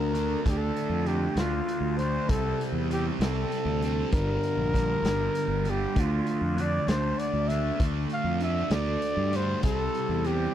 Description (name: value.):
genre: psychedelic rock.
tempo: 65 BPM (dotted quarters).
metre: 6/8.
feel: straight.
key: D minor.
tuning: A4 = 439 Hz.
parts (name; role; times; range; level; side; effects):
warm flugelhorn; melody; 0.0-10.5 s; F4 to F5; -30 LUFS; equal; slapback echo.
fuzz guitar; riff; 0.0-10.5 s; G2 to D4; -30 LUFS; equal; distortion, phaser.
fuzz fingered electric bass; bass; 0.0-10.5 s; G1 to G2; -29 LUFS; equal; overdrive.
raw garage drum kit; drums; 0.1-10.4 s; hi-hat, kick drum, snare drum; -30 LUFS; equal; none.
room: little or no reverb.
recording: dry, close 1970s-style studio recording.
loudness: -25 LUFS.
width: side -10 dB against mid.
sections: 0.0-10.5 A section.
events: none.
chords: 0.0 Dm; 2.3 Cadd9; 4.1 Gm; 6.0 Dm; 9.6 C.